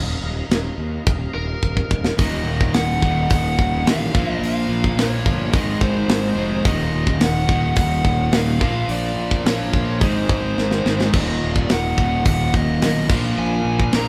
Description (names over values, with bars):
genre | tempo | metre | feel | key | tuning
hard rock | 107 BPM | 4/4 | straight | Eb minor | A4 = 439 Hz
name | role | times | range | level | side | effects
overdriven tonewheel organ | sustained chords | 0.0-14.1 s | Ab3 to Gb5 | -38 LUFS | equal | none
fuzz fingered electric bass | bass | 0.0-14.1 s | Eb1 to Eb2 | -27 LUFS | equal | overdrive
tight metal drum kit | drums | 0.5-14.1 s | crash cymbal, hi-hat, kick drum, snare drum | -23 LUFS | equal | none
lead guitar through a small cranked amp | melody | 1.3-14.1 s | Bb4 to Bb5 | -28 LUFS | equal | overdrive
cranked stack guitar | riff | 2.2-14.1 s | Eb2 to Bb3 | -29 LUFS | equal | overdrive, spring reverb
distorted electric guitar | riff | 2.2-14.1 s | Eb2 to Bb3 | -30 LUFS | equal | distortion
overdriven semi-hollow guitar | riff | 2.2-14.1 s | Eb2 to Bb3 | -28 LUFS | equal | none
room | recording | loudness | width
moderate large studio reverb, RT60 1.3 s | band playing live in one room | -19 LUFS | mono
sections
0.0-2.2 A section; 2.2-14.1 B section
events
drum fill 1.6-2.2, 10.6-11.1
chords
0.0 Eb5; 2.2 Ebm; 4.1 Bb5; 5.5 Ab; 6.7 Ebm; 8.6 Bb; 10.0 Ab; 11.1 Ebm; 13.1 Bb5